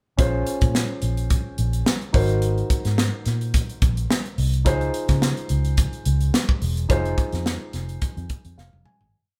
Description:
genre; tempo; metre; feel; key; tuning
polished 1980s jazz-funk pop; 107 BPM; 4/4; swing 54% on 16ths; Bb minor; A4 = 440 Hz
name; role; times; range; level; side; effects
warm grand piano; accompaniment; 0.2-9.2 s; Db4 to Ab5; -31 LUFS; equal; none
vintage muted fingered electric bass; bass; 0.2-9.1 s; E1 to Db3; -25 LUFS; equal; none
crisp fusion drum kit; drums; 0.2-9.1 s; hi-hat, kick drum, snare drum, toms; -25 LUFS; equal; none
room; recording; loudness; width
light reverb; band playing live in one room; -22 LUFS; mono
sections
0.2-9.1 verse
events
fade-out 6.9-9.1; grand piano fill 8.3-9.1; drum fill 8.6-9.1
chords
0.2 Bbm9; 2.1 Ab9; 4.7 Dbmaj7; 6.9 Fm7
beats
| 0.18 0.74 1.30 1.86 | 2.42 2.98 3.54 4.10 | 4.66 5.22 5.78 6.34 | 6.90 7.46 8.02 8.58

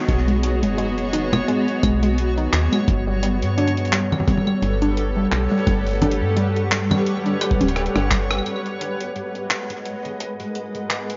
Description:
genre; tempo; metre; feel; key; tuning
IDM; 86 BPM; 4/4; swing 56% on 16ths; unclear; A4 = 440 Hz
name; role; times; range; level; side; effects
granular cloud pad; sustained chords; 0.0-11.2 s; G3 to F#5; -27 LUFS; equal; built-in reverb
warbly dusty pluck; arpeggios; 0.0-11.0 s; G3 to D#4; -26 LUFS; equal; chorus, tape echo
backwards swelling texture; texture; 0.0-11.2 s; C#5 to D#5; -35 LUFS; equal; built-in reverb
woody FM bass; bass; 0.1-8.4 s; D1 to G2; -25 LUFS; equal; none
electronic kick drum; drums; 0.1-8.3 s; none; -24 LUFS; equal; none
jungle sampler-style drum kit; drums; 0.1-11.2 s; claves, congas, handclaps, hi-hat, rim click; -27 LUFS; equal; none
room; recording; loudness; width
moderate lush hall reverb, RT60 2.6 s; worn, warbling old tape, cassette tape, warbly pitch drift, nothing above 7.5 kHz; -21 LUFS; mono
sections
0.0-8.5 A section; 8.5-11.2 B section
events
drum fill 7.4-8.5; filter sweep on synth pluck 8.5-11.2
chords
0.0 B6; 2.9 Gmaj7; 8.5 G#m7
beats
| 0.09 0.79 1.48 2.18 | 2.88 3.58 4.27 4.97 | 5.67 6.37 7.07 7.76 | 8.46 9.16 9.86 10.55

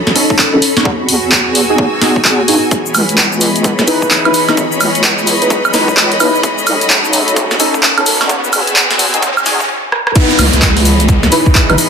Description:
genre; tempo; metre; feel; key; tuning
UK garage, two-step garage; 129 BPM; 4/4; swing 63% on 16ths; C# minor; A4 = 440 Hz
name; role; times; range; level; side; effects
warm analog pad; sustained chords; 0.0-11.9 s; E3 to D#5; -23 LUFS; equal; chorus, sidechain pumping
deep soft wobble bass; bass; 0.0-11.8 s; F#1 to G#2; -16 LUFS; equal; chorus, high-pass filter
clear studio string section; texture; 0.0-11.9 s; E3 to E6; -19 LUFS; left 1 dB; sidechain pumping
punchy analog drum machine; drums; 0.1-11.9 s; crash cymbal, handclaps, hi-hat, rim click, shaker, snare drum, woodblock; -12 LUFS; right 1 dB; none
deep mellow chord stab; stabs; 0.2-11.8 s; C#4 to D#5; -15 LUFS; equal; ensemble chorus, ping-pong delay
electronic kick drum; drums; 0.3-11.7 s; none; -16 LUFS; equal; high-pass filter on kick, high-pass filter on room
riser and downlifter; sound effects; 5.4-11.9 s; none; -20 LUFS; equal; none
room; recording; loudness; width
moderate plate reverb, RT60 1.0 s, digital ambience; dense, heavily limited modern master, high-pass filter; -9 LUFS; side -6 dB against mid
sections
0.0-10.2 A section; 10.2-11.9 B section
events
build-up 0.0-10.2; riser 5.4-9.7; stop 9.7-10.2; drum fill 9.9; drop 10.2-11.9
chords
0.0 B9; 0.9 Emaj9; 2.7 C#m9; 6.4 B9; 8.3 Emaj9; 10.2 C#m9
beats
0.39 | 0.85 1.32 1.78 2.25 | 2.71 3.18 3.64 4.11 | 4.57 5.04 5.50 5.97 | 6.43 6.90 7.37 7.83 | 8.29 8.76 9.22 9.69 | 10.15 10.62 11.09 11.55

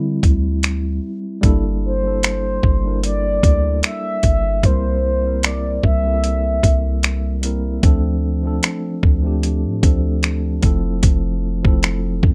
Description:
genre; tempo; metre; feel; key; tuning
contemporary R&B; 75 BPM; 4/4; swing 54% on 16ths; G dorian; A4 = 440 Hz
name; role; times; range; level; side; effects
mellow tine electric piano; accompaniment; 0.0-12.3 s; F3 to Bb4; -26 LUFS; equal; none
warm 808-style bass; bass; 0.0-12.3 s; F1 to D3; -22 LUFS; equal; none
dusty soul sampler-style drum kit; drums; 0.2-12.3 s; finger snaps, hi-hat, kick drum; -18 LUFS; equal; overdrive
mellow horn-like synth lead; melody; 1.9-7.4 s; C5 to E5; -25 LUFS; equal; chorus, delay
room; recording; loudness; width
little or no reverb; none; -18 LUFS; mono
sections
0.0-1.4 A section; 1.4-12.3 B section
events
tine electric piano solo 0.0-1.4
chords
0.0 D7sus4; 1.4 Gm69; 4.6 C7; 7.8 Dm7; 10.6 Fmaj7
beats
0.63 | 1.43 2.23 3.03 3.83 | 4.63 5.43 6.23 7.03 | 7.83 8.63 9.43 10.23 | 11.03 11.83

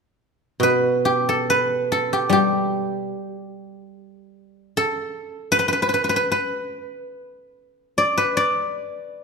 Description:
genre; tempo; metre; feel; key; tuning
chinese traditional, Chinese solo plucked strings; 74 BPM; 2/4; rubato; unclear; A4 = 440 Hz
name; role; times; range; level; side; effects
guzheng; solo; 0.6-9.2 s; B2 to D5; -19 LUFS; equal; none
room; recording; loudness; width
moderate recital hall reverb, RT60 1.7 s; minimal, uncompressed stereo recording; -19 LUFS; side -4 dB against mid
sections
0.6-9.2 A section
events
none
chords
none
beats
| 0.62 1.47 | 2.31 3.12 | 3.92 4.71 | 5.52 6.32 | 7.14 7.97 | 8.77

